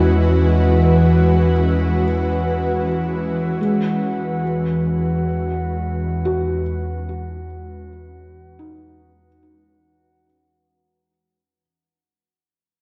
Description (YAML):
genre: ambient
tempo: free time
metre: none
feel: none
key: E major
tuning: A4 = 440 Hz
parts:
  - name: ethereal airy pad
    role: sustained chords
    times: 0.0-10.3 s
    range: E3 to B4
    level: -22 LUFS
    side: equal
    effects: ensemble chorus, built-in reverb
  - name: felt-muted upright piano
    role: arpeggios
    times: 0.0-11.6 s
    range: G#3 to D#5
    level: -29 LUFS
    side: equal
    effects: delay
  - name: deep rumbling drone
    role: bass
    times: 0.0-10.2 s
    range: E2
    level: -24 LUFS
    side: equal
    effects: built-in reverb
  - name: glass harmonica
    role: texture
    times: 0.0-10.3 s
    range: F#4 to F#5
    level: -30 LUFS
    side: equal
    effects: none
room: wet concert hall reverb, RT60 2.1 s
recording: worn, warbling old tape, cassette tape, warbly pitch drift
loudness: -19 LUFS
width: mono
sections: 0.0-10.2 A section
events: fade-out 1.4-10.2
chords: 0.0 Eadd9